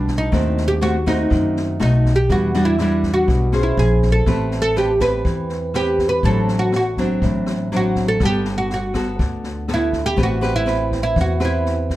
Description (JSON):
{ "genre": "bossa nova", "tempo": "122 BPM", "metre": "4/4", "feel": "straight", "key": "unclear", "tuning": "A4 = 441 Hz", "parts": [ { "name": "oud", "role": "melody", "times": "0.0-12.0 s", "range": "D4 to B4", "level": "-20 LUFS", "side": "right 1 dB", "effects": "plate reverb" }, { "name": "nylon-string guitar", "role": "accompaniment", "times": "0.0-12.0 s", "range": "A2 to C5", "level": "-22 LUFS", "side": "equal", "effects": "none" }, { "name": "upright bass", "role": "bass", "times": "0.0-12.0 s", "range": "G1 to F#2", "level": "-22 LUFS", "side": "equal", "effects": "none" }, { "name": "open jazz drum kit", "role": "drums", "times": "0.1-12.0 s", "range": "kick drum, rim click, snare drum", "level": "-26 LUFS", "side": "left 1 dB", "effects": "none" } ], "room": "light reverb", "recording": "dark, warm production", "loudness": "-16 LUFS", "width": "side -15 dB against mid", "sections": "0.0-12.0 A section", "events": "none", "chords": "0.3 D#dim7; 1.8 B7; 2.3 Em9; 3.8 A#m9; 4.3 Am9; 6.2 D7/A; 8.2 Gmaj9; 10.2 Am9" }